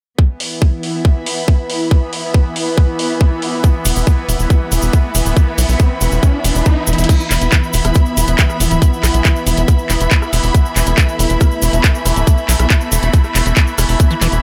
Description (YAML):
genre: psychedelic trance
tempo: 139 BPM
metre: 4/4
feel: straight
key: unclear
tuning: A4 = 441 Hz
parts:
  - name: bubbling stepped-filter texture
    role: sustained chords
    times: 0.5-14.4 s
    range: E3 to B3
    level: -25 LUFS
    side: equal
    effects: chorus, built-in reverb, sidechain pumping
  - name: electronic kick drum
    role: drums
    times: 0.2-14.1 s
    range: none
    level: -13 LUFS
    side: equal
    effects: none
  - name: warm symphonic string section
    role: texture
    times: 0.2-14.4 s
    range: B3 to B5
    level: -24 LUFS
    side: equal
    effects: sidechain pumping
  - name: drum and bass drum kit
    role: drums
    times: 0.4-14.4 s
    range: crash cymbal, handclaps, hi-hat, rim click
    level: -23 LUFS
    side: equal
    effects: none
  - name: cabasa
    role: percussion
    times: 3.6-14.4 s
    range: none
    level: -25 LUFS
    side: equal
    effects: none
  - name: riser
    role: sound effects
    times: 4.6-7.1 s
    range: none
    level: -29 LUFS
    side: equal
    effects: none
  - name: tight sequencer bass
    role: bass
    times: 3.9-14.4 s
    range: D1 to B1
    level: -18 LUFS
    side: equal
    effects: none
  - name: liquid acid bass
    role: riff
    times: 14.1-14.3 s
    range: E3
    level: -22 LUFS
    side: equal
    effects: phaser, sidechain pumping
room: light reverb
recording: none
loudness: -14 LUFS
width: mono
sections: 0.2-7.1 A section; 7.1-14.4 B section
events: riser 4.6-7.1; drum fill 6.9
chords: 0.2 E5